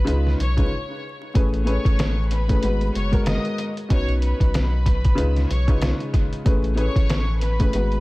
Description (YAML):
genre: hip hop, boom-bap hip-hop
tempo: 94 BPM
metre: 4/4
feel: swing 58% on 16ths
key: unclear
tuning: A4 = 440 Hz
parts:
  - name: warm studio violin section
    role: melody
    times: 0.0-8.0 s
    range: B4 to D#6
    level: -31 LUFS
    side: left 1 dB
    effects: high-pass filter, low-pass filter, tape echo
  - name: dark upright piano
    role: accompaniment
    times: 0.0-8.0 s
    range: G#2 to B4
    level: -26 LUFS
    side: left 1 dB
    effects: high-pass filter, low-pass filter, tape echo
  - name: warm sub bass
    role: bass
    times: 0.0-8.0 s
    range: F#1 to C#2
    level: -22 LUFS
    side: equal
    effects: none
  - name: trip hop sampler-style drum kit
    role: drums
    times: 0.1-8.0 s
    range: hi-hat, kick drum, snare drum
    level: -22 LUFS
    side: equal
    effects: none
room: small room reverb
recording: echo-heavy mix, vinyl crackle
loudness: -18 LUFS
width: side -21 dB against mid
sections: 0.0-8.0 A section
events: break 0.7-1.4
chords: 0.1 C#7; 1.4 Amaj7; 2.6 G#m7; 3.9 Badd9; 5.2 C#7; 6.5 Amaj7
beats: 0.07 0.71 | 1.35 1.99 2.63 3.27 | 3.90 4.54 5.18 5.82 | 6.46 7.10 7.73